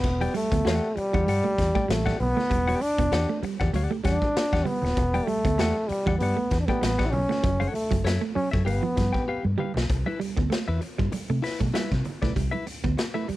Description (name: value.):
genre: funk.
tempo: 97 BPM.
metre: 4/4.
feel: swing 56% on 16ths.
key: E dorian.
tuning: A4 = 440 Hz.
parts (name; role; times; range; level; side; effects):
warm trombone; melody; 0.0-9.5 s; G3 to E4; -26 LUFS; equal; none.
clean electric guitar; accompaniment; 0.0-13.3 s; E4 to G5; -31 LUFS; left 4 dB; none.
vintage muted fingered electric bass; bass; 0.0-13.3 s; D#1 to C3; -27 LUFS; equal; none.
raw garage drum kit; drums; 0.0-13.4 s; hi-hat, kick drum, snare drum, splash cymbal; -29 LUFS; equal; none.
semi-hollow electric guitar; riff; 0.2-13.4 s; F3 to B3; -30 LUFS; right 7 dB; none.
congas; percussion; 0.2-13.3 s; none; -36 LUFS; right 4 dB; none.
room: little or no reverb.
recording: none.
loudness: -23 LUFS.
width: side -16 dB against mid.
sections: 0.0-9.9 A section; 9.9-13.4 B section.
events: drum fill 9.3-9.9.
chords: 0.0 Em9; 7.4 F#m7; 8.7 G7; 9.9 Cmaj9.